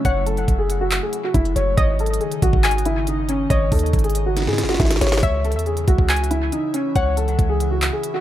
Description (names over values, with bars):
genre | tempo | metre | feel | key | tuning
hip hop, trap | 139 BPM | 4/4 | half-time | C# minor | A4 = 439 Hz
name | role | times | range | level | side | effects
dark grand piano | melody | 0.0-8.2 s | C#4 to C#5 | -23 LUFS | left 1 dB | low-pass filter, dub echo
airy breathy pad | sustained chords | 0.0-8.2 s | C#3 to E4 | -30 LUFS | right 1 dB | chorus, phaser
warm 808-style bass | bass | 0.0-7.9 s | F#1 to G#2 | -21 LUFS | equal | none
trap drum kit | drums | 0.0-8.1 s | handclaps, hi-hat, kick drum, snare drum | -21 LUFS | equal | none
warbly dusty pluck | second line | 0.1-7.4 s | D#5 to G#5 | -29 LUFS | left 3 dB | chorus, dub echo
room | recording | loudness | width
little or no reverb | echo-heavy mix | -17 LUFS | side -12 dB against mid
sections
0.0-5.2 A section; 5.2-8.2 A section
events
drum fill 4.4-5.2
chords
0.0 F#m7; 1.8 G#sus4; 5.2 C#m